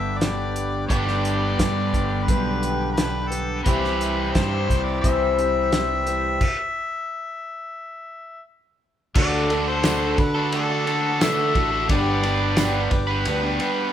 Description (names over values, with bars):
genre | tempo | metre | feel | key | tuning
folk rock and heartland rock | 87 BPM | 4/4 | straight | D major from 9.2 s | A4 = 440 Hz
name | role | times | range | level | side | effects
mellow harmonica | melody | 0.0-13.2 s | A4 to E5 | -27 LUFS | left 2 dB | none
picked acoustic archtop guitar | accompaniment | 0.0-13.9 s | C3 to C5 | -27 LUFS | left 3 dB | none
accordion | sustained chords | 0.0-13.9 s | C4 to E6 | -34 LUFS | equal | none
overdriven electric guitar | riff | 0.0-13.9 s | G2 to B4 | -26 LUFS | right 1 dB | none
fingered electric bass | bass | 0.0-13.6 s | G1 to D3 | -27 LUFS | right 1 dB | none
cloth-damped thuddy drum kit | drums | 0.2-13.8 s | crash cymbal, hi-hat, kick drum, ride cymbal, snare drum | -24 LUFS | equal | none
dark upright piano | accompaniment | 3.6-13.7 s | C4 to B5 | -35 LUFS | right 1 dB | none
tambourine | percussion | 9.8-12.7 s | none | -38 LUFS | right 6 dB | none
room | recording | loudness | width
light reverb | band playing live in one room | -20 LUFS | side -10 dB against mid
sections
0.0-9.2 A section; 9.2-13.9 B section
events
stop 6.4-9.2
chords
0.0 G; 3.7 C; 9.2 D; 11.9 G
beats
0.20 | 0.90 1.59 2.28 2.97 | 3.66 4.35 5.04 5.73 | 6.42 7.10 7.79 8.48 | 9.16 9.85 10.53 11.22 | 11.90 12.59 13.27